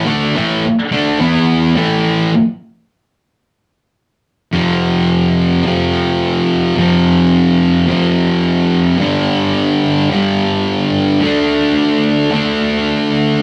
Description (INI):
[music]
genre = rock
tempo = 108 BPM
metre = 4/4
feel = straight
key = unclear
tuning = A4 = 440 Hz
[part]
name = thick fuzz guitar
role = solo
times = 0.0-13.4 s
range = F2 to E4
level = -14 LUFS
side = equal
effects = distortion
[sound]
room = wet studio ambience, RT60 0.5 s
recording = rough rehearsal-room recording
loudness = -14 LUFS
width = mono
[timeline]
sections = 0.0-2.3 A section; 2.3-4.5 B section; 4.5-13.4 C section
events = none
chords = 0.0 A5; 1.2 E5; 1.8 A5; 2.3 N.C.; 4.5 F5; 9.0 G5; 11.2 D5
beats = | 0.09 0.64 1.20 1.75 | 2.31 2.87 3.42 3.98 | 4.54 5.09 5.65 6.21 | 6.77 7.33 7.88 8.44 | 8.99 9.55 10.11 10.66 | 11.21 11.77 12.32 12.87